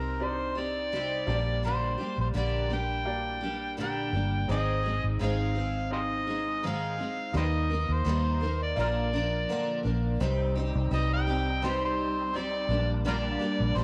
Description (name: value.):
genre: acoustic pop.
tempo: 84 BPM.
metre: 4/4.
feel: swing 55% on 16ths.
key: C minor.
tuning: A4 = 441 Hz.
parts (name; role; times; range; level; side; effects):
overdriven harmonica; melody; 0.0-13.8 s; F4 to G5; -34 LUFS; equal; none.
clear upright piano; accompaniment; 0.0-10.2 s; Bb3 to F5; -43 LUFS; equal; none.
picked steel-string acoustic guitar; accompaniment; 0.0-13.8 s; Ab2 to Bb4; -35 LUFS; equal; double-tracked.
vintage muted fingered electric bass; bass; 0.0-13.8 s; G1 to Eb2; -33 LUFS; equal; none.
bright tonewheel organ; sustained chords; 10.2-13.8 s; G3 to Eb4; -40 LUFS; equal; overdrive, chorus vibrato, fast rotary speaker.
room: moderate spring reverb, RT60 1.9 s, studio reverb.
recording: none.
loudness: -29 LUFS.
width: mono.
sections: 0.0-10.2 A section; 10.2-13.8 B section.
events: none.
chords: 0.0 Cm; 1.3 Gm/Bb; 4.5 Ab; 7.3 Eb; 8.8 Bb; 10.2 Cm; 12.7 Gm/Bb.